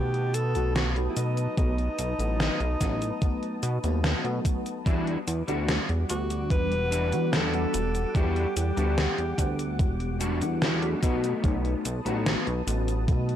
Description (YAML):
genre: vaporwave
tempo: 73 BPM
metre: 4/4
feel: straight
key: E minor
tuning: A4 = 440 Hz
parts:
  - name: breathy alto saxophone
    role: melody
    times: 0.0-9.8 s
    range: D#4 to B4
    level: -32 LUFS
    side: equal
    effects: tape echo
  - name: FM electric piano with soft pad layer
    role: accompaniment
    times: 0.0-13.4 s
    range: D#3 to F#5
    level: -34 LUFS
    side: left 1 dB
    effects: phaser, analog chorus, tape echo
  - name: soft string machine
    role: sustained chords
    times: 0.0-13.4 s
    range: G3 to D#6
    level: -38 LUFS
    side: equal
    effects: phaser, ensemble chorus
  - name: chorused synth bass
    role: bass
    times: 0.0-13.4 s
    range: E1 to B2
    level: -28 LUFS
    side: equal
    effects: none
  - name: gated 80s digital drum machine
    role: drums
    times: 0.1-13.4 s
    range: cabasa, hi-hat, snare drum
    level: -29 LUFS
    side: equal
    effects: gated reverb, gated reverb snare, overdrive
  - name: electronic kick drum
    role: drums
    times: 1.6-13.2 s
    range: none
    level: -25 LUFS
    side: equal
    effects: overdrive
  - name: electric guitar at the edge of break-up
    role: riff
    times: 4.9-12.9 s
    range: G3 to F#5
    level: -33 LUFS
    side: left 2 dB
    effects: analog chorus, tape echo
room: digital ambience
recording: dry, gritty hardware recording, transformer saturation, faint mains hum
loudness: -24 LUFS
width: side -10 dB against mid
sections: 0.0-4.9 A section; 4.9-13.4 B section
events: clean electric guitar fill 9.8-11.4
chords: 0.0 B7; 4.9 Em9; 11.0 B7